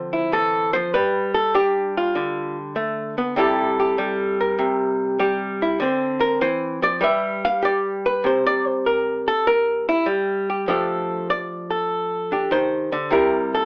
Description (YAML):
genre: solo jazz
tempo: 98 BPM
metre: 4/4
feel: swing 69% on 8ths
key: C mixolydian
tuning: A4 = 442 Hz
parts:
  - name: archtop guitar, miked and amplified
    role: solo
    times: 0.0-13.7 s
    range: C3 to F5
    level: -21 LUFS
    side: equal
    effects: none
room: moderate studio ambience, RT60 0.5 s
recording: AM radio sound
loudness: -21 LUFS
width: mono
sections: 0.0-8.2 A section; 8.2-13.7 A section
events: hollow-body jazz guitar solo 0.0-13.7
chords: 0.0 Dm7; 0.9 G9; 3.4 C6; 5.8 Dm7; 7.0 G; 8.2 C5; 10.7 F13; 13.1 C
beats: 0.31 | 0.92 1.53 2.14 2.75 | 3.35 3.96 4.57 5.18 | 5.79 6.40 7.01 7.62 | 8.23 8.84 9.45 10.06 | 10.66 11.27 11.88 12.49 | 13.10